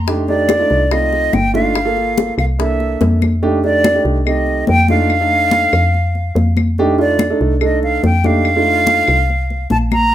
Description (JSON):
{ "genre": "Afro-Cuban jazz", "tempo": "143 BPM", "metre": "4/4", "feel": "straight", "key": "F mixolydian", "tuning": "A4 = 438 Hz", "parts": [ { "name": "woody FM bass", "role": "bass", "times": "0.0-10.1 s", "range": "G1 to F2", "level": "-18 LUFS", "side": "equal", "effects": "none" }, { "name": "warm concert grand piano", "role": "accompaniment", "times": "0.1-9.1 s", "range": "A3 to A4", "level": "-18 LUFS", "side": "right 3 dB", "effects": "none" }, { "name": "bongos", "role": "percussion", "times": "0.1-3.4 s", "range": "none", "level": "-22 LUFS", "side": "left 7 dB", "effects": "none" }, { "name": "congas", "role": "percussion", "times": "0.1-10.1 s", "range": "none", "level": "-20 LUFS", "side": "left 3 dB", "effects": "none" }, { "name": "breathy silver concert flute", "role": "melody", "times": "0.3-10.1 s", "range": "D5 to Bb5", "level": "-16 LUFS", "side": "equal", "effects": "plate reverb" }, { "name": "claves", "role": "percussion", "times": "0.5-10.1 s", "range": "none", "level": "-28 LUFS", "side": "left 8 dB", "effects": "none" } ], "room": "moderate studio reverb, RT60 0.5 s", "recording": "none", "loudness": "-12 LUFS", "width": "side -12 dB against mid", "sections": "0.0-3.4 A section; 3.4-10.1 A section", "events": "none", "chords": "0.1 F13; 1.8 Gm7; 2.6 C13; 3.4 F13" }